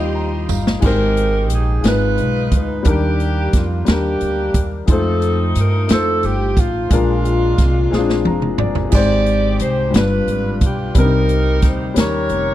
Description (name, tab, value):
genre	slow gospel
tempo	59 BPM (dotted quarters)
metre	6/8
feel	straight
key	Eb major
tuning	A4 = 440 Hz
part	clear saxophone section	melody	0.0-12.5 s	Ab3 to D5	-20 LUFS	right 1 dB	slapback echo
part	warm upright piano	accompaniment	0.0-12.5 s	G2 to Bb5	-21 LUFS	left 4 dB	none
part	bright studio string section	sustained chords	0.0-0.8 s	Eb5 to C6	-34 LUFS	right 3 dB	none
part	upright bass	bass	0.0-12.5 s	F1 to G2	-19 LUFS	right 1 dB	none
part	swinging big-band drum kit	drums	0.5-12.5 s	crash cymbal, hi-hat, kick drum, snare drum, toms	-18 LUFS	right 1 dB	none
part	tambourine	percussion	0.5-0.8 s	none	-33 LUFS	right 20 dB	none
room	studio reverb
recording	dry, close 1970s-style studio recording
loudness	-14 LUFS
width	side -13 dB against mid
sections	0.8-12.5 A section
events	drum fill 0.0-0.8, 7.9-8.9; upright piano fill 0.0-0.8, 7.9-8.9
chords	0.0 Eb69; 0.8 Abmaj7; 1.8 Abm6; 2.9 Ebmaj7; 4.9 F7; 6.9 Bb7; 8.9 Abmaj7; 9.9 G7; 11.0 Cm7; 12.0 Eb7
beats	| 0.83 1.84 | 2.86 3.87 | 4.88 5.90 | 6.91 7.92 | 8.93 9.94 | 10.95 11.96